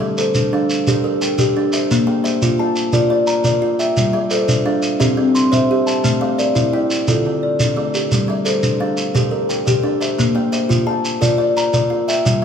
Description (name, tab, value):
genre	southern african traditional, mbira-style interlocking cycle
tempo	116 BPM (dotted quarters)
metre	12/8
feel	straight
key	unclear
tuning	A4 = 439 Hz
part	kalimba	arpeggios	0.0-12.4 s	D3 to C6	-19 LUFS	left 3 dB	none
part	kalimba	arpeggios	0.0-12.4 s	D3 to E5	-19 LUFS	right 1 dB	none
part	shekere	percussion	0.2-12.4 s	none	-20 LUFS	right 1 dB	none
room	moderate large studio reverb, RT60 1.4 s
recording	band playing live in one room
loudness	-15 LUFS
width	side -7 dB against mid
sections	0.0-12.4 A section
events	none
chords	0.0 Gm; 1.9 Bb; 4.0 G5; 5.0 C; 6.0 A5; 7.1 Dm; 8.1 Gm; 10.2 Bb